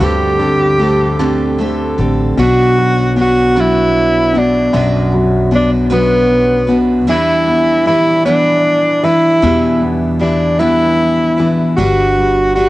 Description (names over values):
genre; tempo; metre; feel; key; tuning
six-eight pop ballad; 51 BPM (dotted quarters); 6/8; straight; unclear; A4 = 440 Hz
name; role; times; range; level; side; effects
clear tenor saxophone; melody; 0.0-12.7 s; B3 to G4; -13 LUFS; equal; cassette tape, analog delay
felt-muted upright piano; accompaniment; 0.0-12.7 s; F#2 to B3; -16 LUFS; left 3 dB; none
picked steel-string acoustic guitar; arpeggios; 0.0-12.7 s; B2 to B4; -18 LUFS; right 4 dB; none
upright bass; bass; 0.0-12.7 s; G1 to E2; -19 LUFS; equal; none
room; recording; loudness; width
light reverb; home recording on cassette, nothing above 10.3 kHz; -10 LUFS; side -17 dB against mid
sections
0.0-2.4 A section; 2.4-12.7 B section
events
none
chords
0.0 D7sus4; 2.4 Bm; 7.1 Em7; 11.8 Gmaj7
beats
| 0.01 1.20 | 2.39 3.57 | 4.75 5.92 | 7.09 8.26 | 9.43 10.60 | 11.78